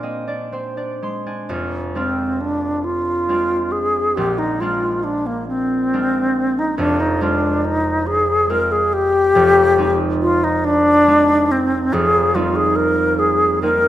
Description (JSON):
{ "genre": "classical, impressionist duo for alto flute and harp", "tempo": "46 BPM (dotted quarters)", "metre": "6/8", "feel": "rubato", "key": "F dorian", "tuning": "A4 = 439 Hz", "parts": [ { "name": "concert harp", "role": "accompaniment", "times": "0.0-13.9 s", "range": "F1 to C6", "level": "-22 LUFS", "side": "right 1 dB", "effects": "none" }, { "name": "alto flute", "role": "melody", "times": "2.0-13.9 s", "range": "Bb3 to Bb4", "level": "-16 LUFS", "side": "left 1 dB", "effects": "none" } ], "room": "moderate recital hall reverb, RT60 1.6 s", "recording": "none", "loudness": "-15 LUFS", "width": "side -13 dB against mid", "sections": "0.0-1.5 A section; 1.5-13.9 B section", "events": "none", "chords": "0.0 Bb9; 1.5 Fm6; 4.2 Bb9; 6.8 Fm6; 9.4 Abmaj7/F; 11.9 Fm11" }